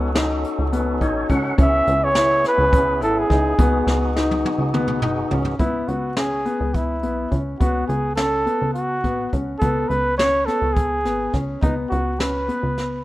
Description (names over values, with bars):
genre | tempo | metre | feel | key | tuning
progressive instrumental, band music in an uneven meter | 209 BPM (eighths) | 7/8 | straight | C# minor | A4 = 440 Hz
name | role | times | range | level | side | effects
tonewheel organ | accompaniment | 0.0-5.6 s | B3 to F#5 | -26 LUFS | equal | overdrive, fast rotary speaker
dark concert grand piano | arpeggios | 0.0-13.0 s | B3 to E4 | -25 LUFS | left 2 dB | none
plucky analog bass | bass | 0.0-13.0 s | F#1 to C#2 | -25 LUFS | equal | none
jazz brush drum kit | drums | 0.2-12.9 s | hi-hat, kick drum, snare drum, toms | -22 LUFS | equal | none
mellow flugelhorn | melody | 1.6-13.0 s | D#4 to E5 | -21 LUFS | right 1 dB | none
room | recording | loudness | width
light reverb, studio ambience | rough home demo mix | -18 LUFS | side -16 dB against mid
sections
0.0-5.6 A section; 5.6-13.0 B section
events
flugelhorn solo 0.0-5.6; tonewheel organ fill 0.7-1.6; drum fill 3.9-5.6, 12.8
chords
0.0 B9/C#; 1.6 Amaj9#11 (rootless); 3.6 G#m7/C#; 5.6 C#m7; 7.6 Bsus2/C#; 9.6 G#madd11; 11.6 F#sus4